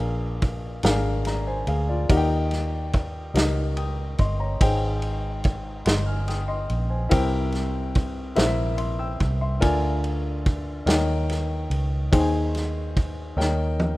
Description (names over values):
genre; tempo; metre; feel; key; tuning
slow gospel; 48 BPM (dotted quarters); 6/8; straight; Ab major; A4 = 440 Hz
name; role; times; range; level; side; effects
warm upright piano; accompaniment; 0.0-14.0 s; Ab2 to F6; -27 LUFS; left 2 dB; none
vintage muted fingered electric bass; bass; 0.0-14.0 s; G1 to Eb2; -26 LUFS; equal; none
warm soul drum kit; drums; 0.4-14.0 s; kick drum, ride cymbal, snare drum, toms; -25 LUFS; equal; none
room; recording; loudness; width
little or no reverb; rough home demo mix; -22 LUFS; side -18 dB against mid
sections
0.0-14.0 A section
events
drum fill 13.4-14.0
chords
0.0 Bb7; 2.1 Eb; 4.6 Abmaj7; 7.1 C7; 9.6 Bb7/D; 10.9 Eb7; 12.1 Ab/Eb; 13.4 Eb7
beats
0.84 | 2.10 3.35 | 4.61 5.86 | 7.12 8.37 | 9.62 10.88 | 12.13 13.38